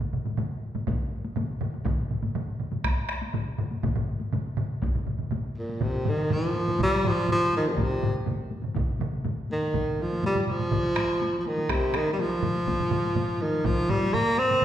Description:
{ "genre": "japanese traditional, taiko drum ensemble", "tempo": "122 BPM", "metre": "4/4", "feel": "straight", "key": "F suspended pentatonic", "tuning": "A4 = 435 Hz", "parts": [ { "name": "solo taiko drums", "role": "percussion", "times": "0.0-14.6 s", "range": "none", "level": "-33 LUFS", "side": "left 4 dB", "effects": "none" }, { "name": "solo taiko drums", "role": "percussion", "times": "0.0-14.6 s", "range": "none", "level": "-32 LUFS", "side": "right 4 dB", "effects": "none" }, { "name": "taiko ensemble", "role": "percussion", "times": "0.3-14.6 s", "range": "none", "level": "-37 LUFS", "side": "left 2 dB", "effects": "none" }, { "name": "taiko ensemble", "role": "percussion", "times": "0.9-14.6 s", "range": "none", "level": "-34 LUFS", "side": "equal", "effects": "none" }, { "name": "warm tenor saxophone", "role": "melody", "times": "5.6-14.6 s", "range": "Bb2 to C4", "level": "-24 LUFS", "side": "equal", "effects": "none" } ], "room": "wet recital hall reverb, RT60 1.6 s", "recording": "recorded in a church or concert hall", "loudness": "-24 LUFS", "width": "side -11 dB against mid", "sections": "0.0-5.8 A section; 5.8-14.6 B section", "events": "none", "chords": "none" }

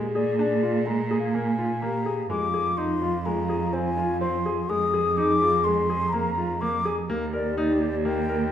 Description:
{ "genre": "contemporary instrumental, chamber music in an uneven meter", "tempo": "125 BPM", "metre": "5/4", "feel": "straight", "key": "unclear", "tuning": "A4 = 440 Hz", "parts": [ { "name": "mellow French horn", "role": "second line", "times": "0.0-8.5 s", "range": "F4 to Ab4", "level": "-28 LUFS", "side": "left 2 dB", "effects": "none" }, { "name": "clear grand piano", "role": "arpeggios", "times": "0.0-8.4 s", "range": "Ab3 to Bb4", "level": "-29 LUFS", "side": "left 2 dB", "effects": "none" }, { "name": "clear cello", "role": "bass", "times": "0.0-8.5 s", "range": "Eb2 to Bb2", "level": "-28 LUFS", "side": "right 6 dB", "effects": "none" }, { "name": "breathy mellow concert flute", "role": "melody", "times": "0.2-8.5 s", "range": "D5 to Eb6", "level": "-28 LUFS", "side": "left 3 dB", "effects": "none" }, { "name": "large celesta", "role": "texture", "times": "1.2-8.5 s", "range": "D5 to Ab6", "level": "-37 LUFS", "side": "left 3 dB", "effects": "none" } ], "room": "wet recital hall reverb, RT60 1.5 s", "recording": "none", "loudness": "-22 LUFS", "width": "side -10 dB against mid", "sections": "0.0-8.5 A section", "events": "none", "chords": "0.0 Bb7; 2.3 Fm; 4.7 Bb7/F; 7.1 Ebmaj7" }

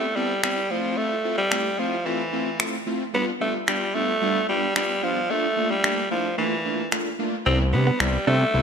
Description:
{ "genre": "dance-pop", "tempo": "111 BPM", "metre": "4/4", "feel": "straight", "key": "C major", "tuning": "A4 = 439 Hz", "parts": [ { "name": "raspy alto saxophone", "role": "melody", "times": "0.0-8.6 s", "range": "E3 to C4", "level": "-24 LUFS", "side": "equal", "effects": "digital delay" }, { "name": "big bright polysynth", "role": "accompaniment", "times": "0.0-8.6 s", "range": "G3 to A4", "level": "-27 LUFS", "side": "equal", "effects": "none" }, { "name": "electronic finger snaps", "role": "drums", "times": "0.4-8.1 s", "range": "none", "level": "-25 LUFS", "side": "equal", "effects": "gated reverb" }, { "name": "direct-recorded clean electric guitar", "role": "riff", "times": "7.5-8.4 s", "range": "B3 to D4", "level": "-28 LUFS", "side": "right 7 dB", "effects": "none" }, { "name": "fat analog bass", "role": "bass", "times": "7.5-8.6 s", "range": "C2 to C3", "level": "-21 LUFS", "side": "equal", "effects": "none" } ], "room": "moderate lush hall reverb, RT60 1.6 s, digital ambience", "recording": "bright 1980s-style digital production", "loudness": "-21 LUFS", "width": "side -6 dB against mid", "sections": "0.0-8.6 A section", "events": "none", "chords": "0.0 Cmaj7; 0.7 Fmaj7; 3.1 G7; 5.3 Bbmaj7; 7.5 Cmaj7" }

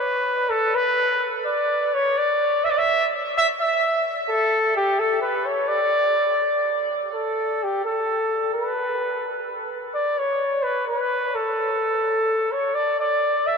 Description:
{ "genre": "mexican folk", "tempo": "85 BPM (dotted quarters)", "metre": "6/8", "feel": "straight", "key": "unclear", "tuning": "A4 = 440 Hz", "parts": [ { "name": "mellow trumpet", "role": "solo", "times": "0.0-13.6 s", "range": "G4 to E5", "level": "-20 LUFS", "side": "equal", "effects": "analog delay" } ], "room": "wet huge ambient reverb, RT60 6.5 s", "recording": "dreamy mix soaked in reverb", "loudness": "-20 LUFS", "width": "side -5 dB against mid", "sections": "0.0-7.1 A section; 7.1-13.6 A section", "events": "none", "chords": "none" }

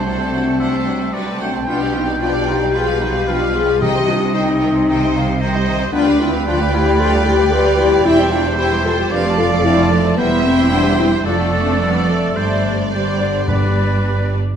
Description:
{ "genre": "quick classical-period movement for symphony orchestra", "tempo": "112 BPM", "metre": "4/4", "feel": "straight", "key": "C minor", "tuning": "A4 = 440 Hz", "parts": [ { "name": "rich studio violin section", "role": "melody", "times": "0.0-14.3 s", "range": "G4 to E5", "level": "-26 LUFS", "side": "left 2 dB", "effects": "none" }, { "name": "concert flute", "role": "second line", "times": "0.0-14.3 s", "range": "D5 to A5", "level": "-27 LUFS", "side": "equal", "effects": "none" }, { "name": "rich studio violin section", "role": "second line", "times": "0.0-14.4 s", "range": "A4 to A5", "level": "-26 LUFS", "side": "right 1 dB", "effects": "none" }, { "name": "warm oboe", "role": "second line", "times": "0.0-14.3 s", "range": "A4 to G5", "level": "-25 LUFS", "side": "right 2 dB", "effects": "none" }, { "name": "rich studio viola section", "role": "accompaniment", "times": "0.0-14.4 s", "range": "Eb3 to G4", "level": "-23 LUFS", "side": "right 1 dB", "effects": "none" }, { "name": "dark French horn section", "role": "sustained chords", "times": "0.0-14.3 s", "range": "G3 to B4", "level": "-18 LUFS", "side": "left 3 dB", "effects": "none" }, { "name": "rich studio cello section", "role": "bass", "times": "0.0-14.4 s", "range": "D2 to C3", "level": "-24 LUFS", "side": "right 3 dB", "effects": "none" }, { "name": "warm studio double bass section", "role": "bass", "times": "0.0-14.4 s", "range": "E1 to D2", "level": "-22 LUFS", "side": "right 2 dB", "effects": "none" }, { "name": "warm clarinet", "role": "second line", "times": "0.1-14.3 s", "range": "D3 to G4", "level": "-26 LUFS", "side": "left 1 dB", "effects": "none" }, { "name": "timpani", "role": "percussion", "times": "3.8-4.6, 13.5-14.3 s", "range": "G2 to C3", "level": "-22 LUFS", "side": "equal", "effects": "none" } ], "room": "wet recital hall reverb, RT60 1.3 s", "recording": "none", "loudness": "-14 LUFS", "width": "side -8 dB against mid", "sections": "0.0-14.6 A section", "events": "none", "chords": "0.0 D7/C; 1.7 G7/B; 3.8 Cm; 5.9 G7/D; 8.0 C/E; 9.1 Dm/F; 10.2 C/E; 11.3 Dm/F; 12.4 Gsus4; 13.5 G" }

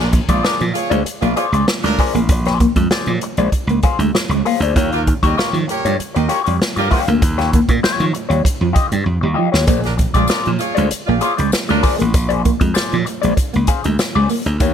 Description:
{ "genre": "funk", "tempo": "97 BPM", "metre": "4/4", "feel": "straight", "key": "Bb mixolydian", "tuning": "A4 = 440 Hz", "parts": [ { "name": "warm horn section", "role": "second line", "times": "0.0-11.9 s", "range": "D4 to Eb5", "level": "-23 LUFS", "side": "right 2 dB", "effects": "slapback echo" }, { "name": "electric guitar at the edge of break-up", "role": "accompaniment", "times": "0.0-14.7 s", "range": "F4 to F5", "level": "-21 LUFS", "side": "left 8 dB", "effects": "wah" }, { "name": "slap bass", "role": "bass", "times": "0.0-14.7 s", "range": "A1 to Eb3", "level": "-18 LUFS", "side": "equal", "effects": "none" }, { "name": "swinging big-band drum kit", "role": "drums", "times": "0.0-14.7 s", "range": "hi-hat, kick drum, snare drum", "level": "-19 LUFS", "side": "equal", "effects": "none" }, { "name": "electric guitar through a small old amp", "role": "riff", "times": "0.1-14.7 s", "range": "F3 to Bb3", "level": "-20 LUFS", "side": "right 2 dB", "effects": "ensemble chorus" }, { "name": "tambourine", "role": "percussion", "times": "9.7-14.7 s", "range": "none", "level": "-33 LUFS", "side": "left 4 dB", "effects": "none" } ], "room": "little or no reverb", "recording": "none", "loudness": "-14 LUFS", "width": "side -8 dB against mid", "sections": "0.0-14.7 A section", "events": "drum fill 9.1-9.7", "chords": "0.0 Bb9; 4.8 Eb9; 9.7 Bb9" }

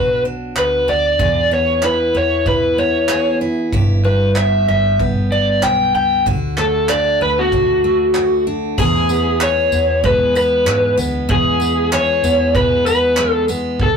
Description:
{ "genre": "acoustic pop", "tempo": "95 BPM", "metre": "4/4", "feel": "swing 55% on 16ths", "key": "E mixolydian", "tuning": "A4 = 440 Hz", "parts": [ { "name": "overdriven slide guitar", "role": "melody", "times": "0.0-14.0 s", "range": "F#4 to G5", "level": "-15 LUFS", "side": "left 1 dB", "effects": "none" }, { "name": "picked steel-string acoustic guitar", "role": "accompaniment", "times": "0.0-13.9 s", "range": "E2 to C#5", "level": "-20 LUFS", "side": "right 1 dB", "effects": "none" }, { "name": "vintage muted fingered electric bass", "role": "bass", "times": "0.0-14.0 s", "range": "G1 to G#2", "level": "-24 LUFS", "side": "equal", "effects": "none" }, { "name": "soft brush drum kit", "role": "drums", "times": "0.6-14.0 s", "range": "crash cymbal, handclaps, kick drum, tambourine", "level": "-22 LUFS", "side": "right 1 dB", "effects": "none" } ], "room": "wet booth ambience, RT60 0.3 s", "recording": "rough rehearsal-room recording, warm saturation", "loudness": "-13 LUFS", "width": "side -6 dB against mid", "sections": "0.0-8.8 A section; 8.8-14.0 B section", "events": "none", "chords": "0.0 Bmadd9; 1.2 E; 3.7 G; 6.3 D; 8.8 E" }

